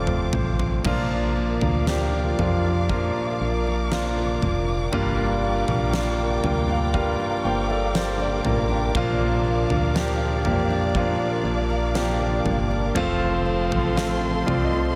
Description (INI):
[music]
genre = pop ballad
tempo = 59 BPM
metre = 4/4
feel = straight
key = Bb major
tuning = A4 = 439 Hz
[part]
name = clear concert grand piano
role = accompaniment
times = 0.0-15.0 s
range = G2 to Bb5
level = -27 LUFS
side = equal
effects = none
[part]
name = warm studio string section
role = sustained chords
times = 0.0-15.0 s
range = A3 to D6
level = -33 LUFS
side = equal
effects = none
[part]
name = solid FM bass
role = bass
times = 0.0-14.9 s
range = F1 to F2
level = -29 LUFS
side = equal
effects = none
[part]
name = huge arena drum kit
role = drums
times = 0.1-14.7 s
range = crash cymbal, kick drum, snare drum, toms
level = -31 LUFS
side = equal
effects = none
[part]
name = fingerpicked steel-string acoustic guitar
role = arpeggios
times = 0.9-15.0 s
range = G2 to Bb4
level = -33 LUFS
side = equal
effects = none
[sound]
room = light reverb, small room ambience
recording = none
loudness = -23 LUFS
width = mono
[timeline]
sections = 0.8-15.0 A section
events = grand piano fill 0.0-0.8, 5.9-9.0, 14.0-15.0; drum fill 0.0-0.8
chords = 0.0 F; 0.8 Bb; 4.9 Gm7; 9.0 Bb; 13.0 F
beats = | 0.85 1.87 2.89 3.91 | 4.93 5.93 6.94 7.95 | 8.96 9.96 10.96 11.95 | 12.96 13.97